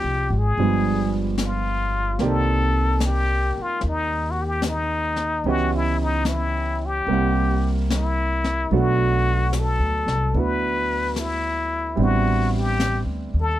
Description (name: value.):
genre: jazz ballad.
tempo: 74 BPM.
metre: 4/4.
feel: swing 68% on 8ths.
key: unclear.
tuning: A4 = 440 Hz.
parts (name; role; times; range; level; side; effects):
trumpet with plunger mute; melody; 0.0-13.6 s; Eb4 to B4; -24 LUFS; left 3 dB; none.
clear baby grand piano; accompaniment; 0.0-13.6 s; Eb3 to F#5; -26 LUFS; right 4 dB; none.
upright bass; bass; 0.0-13.6 s; G1 to Eb2; -23 LUFS; equal; none.
jazz brush drum kit; drums; 0.6-13.6 s; brushed snare drum, hi-hat, snare drum; -31 LUFS; left 3 dB; none.
room: little or no reverb.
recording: close, detailed microphones.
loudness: -20 LUFS.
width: side -13 dB against mid.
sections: 0.0-13.6 A section.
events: none.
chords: 0.0 Dm7b5; 0.6 G7b9; 2.2 Cm7; 5.4 C#m7b5; 7.1 C7#11; 8.7 Bm7; 12.0 Am11.